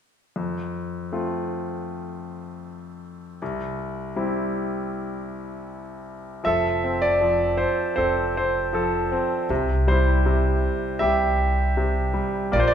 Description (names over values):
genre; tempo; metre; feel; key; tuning
folk; 79 BPM; 4/4; straight; F major; A4 = 440 Hz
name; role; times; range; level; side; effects
bright concert grand piano; melody; 0.4-12.7 s; C2 to E5; -23 LUFS; equal; none
upright bass; bass; 6.5-12.7 s; F1 to C2; -25 LUFS; equal; none
room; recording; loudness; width
wet recital hall reverb, RT60 1.3 s; recorded in a church or concert hall; -21 LUFS; side -8 dB against mid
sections
0.4-6.4 A section; 6.4-12.7 B section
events
none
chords
0.4 F; 3.4 C; 6.4 F; 9.5 C